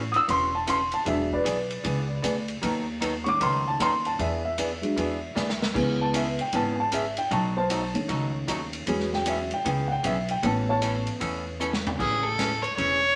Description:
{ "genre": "country, western swing", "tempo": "154 BPM", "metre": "4/4", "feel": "swing 64% on 8ths", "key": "A major", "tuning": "A4 = 440 Hz", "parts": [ { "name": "upright bass", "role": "bass", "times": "0.0-13.2 s", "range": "E1 to E2", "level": "-34 LUFS", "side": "equal", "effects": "none" }, { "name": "dark upright piano", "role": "accompaniment", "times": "0.1-12.0 s", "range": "D#3 to E6", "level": "-29 LUFS", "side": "equal", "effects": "none" }, { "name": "swinging big-band drum kit", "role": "drums", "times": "0.1-12.9 s", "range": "crash cymbal, hi-hat, kick drum, ride cymbal, snare drum, toms", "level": "-36 LUFS", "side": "equal", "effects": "none" }, { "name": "archtop guitar, miked and amplified", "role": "accompaniment", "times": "0.3-13.0 s", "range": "B2 to A4", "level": "-34 LUFS", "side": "equal", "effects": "none" }, { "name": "dark fiddle", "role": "melody", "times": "12.0-13.2 s", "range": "G#4 to C#5", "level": "-25 LUFS", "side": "equal", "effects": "none" } ], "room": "wet studio reverb, RT60 0.8 s", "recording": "none", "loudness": "-26 LUFS", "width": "mono", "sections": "0.0-12.0 A section; 12.0-13.2 B section", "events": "upright piano solo 0.0-12.0; drum fill 5.4-5.7, 11.6-12.0", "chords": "0.0 A6; 1.1 E7; 2.6 B7/D#; 4.2 E7; 5.7 C#m7; 7.3 B7; 8.9 E6; 10.4 Aadd9; 12.0 Amaj7" }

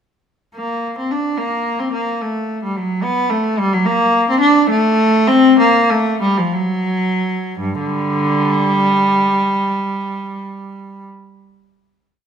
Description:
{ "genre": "classical, baroque-style suite movement for unaccompanied cello", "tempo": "54-73 BPM (dotted quarters)", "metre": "6/8", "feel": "rubato", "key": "G minor", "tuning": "A4 = 440 Hz", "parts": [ { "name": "warm cello", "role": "solo", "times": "0.6-11.1 s", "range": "G2 to D4", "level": "-14 LUFS", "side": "equal", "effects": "none" } ], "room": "moderate recital hall reverb, RT60 1.4 s", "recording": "minimal, uncompressed stereo recording", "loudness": "-14 LUFS", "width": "side -8 dB against mid", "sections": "0.5-7.6 A section; 7.6-11.9 final chord", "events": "slowing down 3.0-7.6", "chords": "none" }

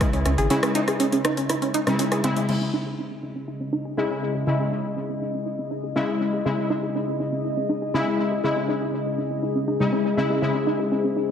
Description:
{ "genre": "melodic techno", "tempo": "121 BPM", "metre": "4/4", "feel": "straight", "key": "C# minor", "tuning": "A4 = 436 Hz", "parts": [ { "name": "tight sequenced synth", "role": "arpeggios", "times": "0.0-11.3 s", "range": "B#3 to G#4", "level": "-27 LUFS", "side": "right 2 dB", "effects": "chorus, vintage 12-bit sampler grit, sidechain pumping, tape echo" }, { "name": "synth brass stab", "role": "stabs", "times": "0.0-11.3 s", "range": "C#3 to E4", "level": "-25 LUFS", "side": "left 2 dB", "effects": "chorus, sidechain pumping, tape echo" }, { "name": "deep house drum kit", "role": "drums", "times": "0.0-2.6 s", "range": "crash cymbal, hi-hat, rim click", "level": "-28 LUFS", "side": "equal", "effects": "none" }, { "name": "round analog bass", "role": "bass", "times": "0.1-0.5 s", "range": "G#1 to C#2", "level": "-23 LUFS", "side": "equal", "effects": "sidechain pumping" }, { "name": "deep dark ambient pad", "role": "sustained chords", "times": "3.2-11.3 s", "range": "C#4 to D#5", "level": "-28 LUFS", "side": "left 1 dB", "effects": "chorus, built-in reverb, sidechain pumping" } ], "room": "wet lush hall reverb, RT60 2.0 s", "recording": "dreamy mix soaked in reverb", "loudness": "-22 LUFS", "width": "side -8 dB against mid", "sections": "0.0-2.5 A section; 2.5-11.3 B section", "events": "none", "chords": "0.0 C#m" }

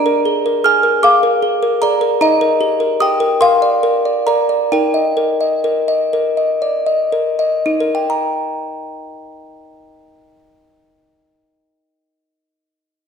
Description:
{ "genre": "classical, lullaby for music box", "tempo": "38-51 BPM (dotted quarters)", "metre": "6/8", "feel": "straight", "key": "Eb major", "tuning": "A4 = 441 Hz", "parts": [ { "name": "music box", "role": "solo", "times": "0.0-11.2 s", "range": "D4 to F6", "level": "-13 LUFS", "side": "equal", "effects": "none" } ], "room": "wet scoring stage reverb, RT60 1.5 s", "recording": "recorded in a church or concert hall", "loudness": "-13 LUFS", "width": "side -6 dB against mid", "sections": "0.0-7.7 A section; 7.7-10.8 B section", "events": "slowing down 1.0-7.7", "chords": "0.0 Bb7/D; 2.2 Eb; 3.4 Bb; 4.7 Eb" }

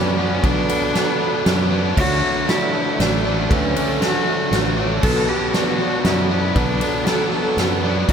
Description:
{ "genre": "post-rock", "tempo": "118 BPM", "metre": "3/4", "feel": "straight", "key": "B minor", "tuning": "A4 = 436 Hz", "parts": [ { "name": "rich cello", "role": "melody", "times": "0.0-8.1 s", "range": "B3 to A4", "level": "-24 LUFS", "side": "left 1 dB", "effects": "digital delay" }, { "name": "glassy FM pad", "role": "sustained chords", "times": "0.0-8.1 s", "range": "A4 to C#6", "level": "-32 LUFS", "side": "left 1 dB", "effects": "none" }, { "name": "vibraphone with soft mallets", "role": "arpeggios", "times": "0.0-8.1 s", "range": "A4 to D5", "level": "-28 LUFS", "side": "right 5 dB", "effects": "digital delay" }, { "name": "crunchy overdriven guitar", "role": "riff", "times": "0.0-8.1 s", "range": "B2 to D4", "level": "-25 LUFS", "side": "right 9 dB", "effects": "none" }, { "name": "distorted electric guitar", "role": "riff", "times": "0.0-8.1 s", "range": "B2 to D4", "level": "-24 LUFS", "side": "left 8 dB", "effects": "distortion, slapback echo" }, { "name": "overdriven fingered electric bass", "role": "bass", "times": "0.0-8.1 s", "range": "A1 to F#2", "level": "-22 LUFS", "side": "equal", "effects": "none" }, { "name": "huge arena drum kit", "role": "drums", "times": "0.4-8.1 s", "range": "crash cymbal, kick drum, ride cymbal, snare drum", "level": "-21 LUFS", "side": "right 1 dB", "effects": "none" } ], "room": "moderate lush hall reverb, RT60 2.0 s, studio ambience", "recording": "big arena sound", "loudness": "-16 LUFS", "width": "side -7 dB against mid", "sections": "0.0-8.1 A section", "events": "none", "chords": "0.0 Bm7; 2.0 Dmaj7; 5.0 Bm7" }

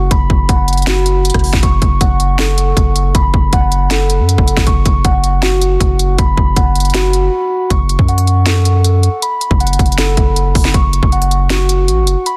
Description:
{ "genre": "hip hop, trap", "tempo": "158 BPM", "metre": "4/4", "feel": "half-time", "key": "F# minor", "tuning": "A4 = 439 Hz", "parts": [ { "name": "muted felt-like synth keys", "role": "arpeggios", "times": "0.0-12.4 s", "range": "F#4 to C#6", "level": "-20 LUFS", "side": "equal", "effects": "chorus, low-pass filter, digital delay" }, { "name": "long sustained 808-style bass", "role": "bass", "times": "0.0-12.2 s", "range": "F#1 to F#2", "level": "-16 LUFS", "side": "equal", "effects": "none" }, { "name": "trap drum kit", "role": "drums", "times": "0.1-12.3 s", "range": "hi-hat, kick drum, rim click, snare drum", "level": "-16 LUFS", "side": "equal", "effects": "none" } ], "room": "digital ambience", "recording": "dense, heavily limited modern master", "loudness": "-13 LUFS", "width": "mono", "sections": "0.0-7.7 A section; 7.7-12.4 B section", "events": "break 7.3-7.7", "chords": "0.1 F#sus4; 1.6 F#m; 3.1 B5/F#; 4.7 F#5; 6.2 F#sus4; 7.7 F#m; 9.2 B5/F#; 10.7 F#5" }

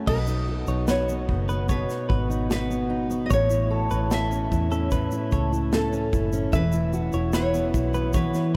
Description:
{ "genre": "acoustic pop", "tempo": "74 BPM", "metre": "4/4", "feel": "straight", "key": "unclear", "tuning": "A4 = 440 Hz", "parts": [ { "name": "nylon-string guitar", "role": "melody", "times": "0.0-8.6 s", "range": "A4 to E5", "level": "-33 LUFS", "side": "equal", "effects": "none" }, { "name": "fingerpicked steel-string acoustic guitar", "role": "accompaniment", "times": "0.0-8.6 s", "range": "A2 to A4", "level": "-29 LUFS", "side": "equal", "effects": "none" }, { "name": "direct-recorded clean electric guitar", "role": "arpeggios", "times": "0.1-8.5 s", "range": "A4 to E5", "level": "-36 LUFS", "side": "equal", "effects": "none" }, { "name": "vintage muted fingered electric bass", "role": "bass", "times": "0.1-8.3 s", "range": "E1 to E2", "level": "-29 LUFS", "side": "equal", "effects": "none" }, { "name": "modern studio drum kit", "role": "drums", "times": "0.1-8.5 s", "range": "crash cymbal, kick drum, shaker, snare drum", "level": "-31 LUFS", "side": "equal", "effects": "none" } ], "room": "moderate huge ambient reverb, RT60 8.8 s", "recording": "in a vast, echoing space", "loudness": "-24 LUFS", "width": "mono", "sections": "0.1-8.6 A section", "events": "none", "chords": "0.1 B; 3.3 A; 6.5 Esus2" }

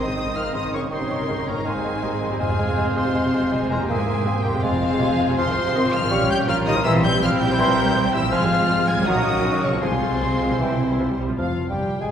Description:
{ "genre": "classical", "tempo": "161 BPM", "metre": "4/4", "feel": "straight", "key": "F minor from 5.4 s", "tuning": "A4 = 440 Hz", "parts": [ { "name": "warm symphonic violin section", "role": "melody", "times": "0.0-12.1 s", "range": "F4 to Ab6", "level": "-28 LUFS", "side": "left 3 dB", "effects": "none" }, { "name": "clear clarinet", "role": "second line", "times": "0.0-12.1 s", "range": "F4 to Ab5", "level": "-29 LUFS", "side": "equal", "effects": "none" }, { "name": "flute section", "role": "second line", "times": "0.0-12.1 s", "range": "F5 to Db6", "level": "-32 LUFS", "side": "right 2 dB", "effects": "none" }, { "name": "warm symphonic violin section", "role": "second line", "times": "0.0-12.1 s", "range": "C4 to Ab5", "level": "-33 LUFS", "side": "left 2 dB", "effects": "none" }, { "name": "clear symphonic viola section", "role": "accompaniment", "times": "0.0-11.3 s", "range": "Db3 to Db4", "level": "-28 LUFS", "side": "right 1 dB", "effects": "none" }, { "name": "warm bassoon", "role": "accompaniment", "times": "0.0-12.1 s", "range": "Eb3 to Bb3", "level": "-30 LUFS", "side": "equal", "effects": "none" }, { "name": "mellow French horn section", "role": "sustained chords", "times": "0.0-12.1 s", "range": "F3 to Eb4", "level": "-28 LUFS", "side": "left 2 dB", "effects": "none" }, { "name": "concert harp", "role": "arpeggios", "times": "0.0-12.1 s", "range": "E2 to Db5", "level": "-33 LUFS", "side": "left 3 dB", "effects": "none" }, { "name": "warm trumpet section", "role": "stabs", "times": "0.0-11.2 s", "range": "E4 to Eb5", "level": "-29 LUFS", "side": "right 1 dB", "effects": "none" }, { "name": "dark symphonic cello section", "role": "bass", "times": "0.0-12.1 s", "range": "F2 to Ab3", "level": "-26 LUFS", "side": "right 1 dB", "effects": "none" }, { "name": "rich chamber double bass section", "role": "bass", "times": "0.0-12.1 s", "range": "E1 to C2", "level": "-28 LUFS", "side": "right 2 dB", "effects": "none" }, { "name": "dark cor anglais", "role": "second line", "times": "0.2-12.1 s", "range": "Bb4 to Ab5", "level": "-30 LUFS", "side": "right 1 dB", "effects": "none" }, { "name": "timpani", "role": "percussion", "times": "2.4-5.1, 9.8-12.0 s", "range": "F2 to C3", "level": "-32 LUFS", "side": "equal", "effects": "none" } ], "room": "wet scoring stage reverb, RT60 1.6 s", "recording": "recorded in a church or concert hall", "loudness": "-18 LUFS", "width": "side -8 dB against mid", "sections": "0.0-11.4 A section", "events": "none", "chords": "0.0 Ab; 0.9 Eb7/G; 1.7 Ab; 2.4 Fm; 3.9 C7/E; 4.6 Fm; 5.4 Fm/Ab; 6.1 Gm7b5/Bb; 6.9 C7/Bb; 8.3 Fm/Ab; 9.1 Gb/Bb; 9.8 Fm/C; 10.6 C; 11.4 Fm" }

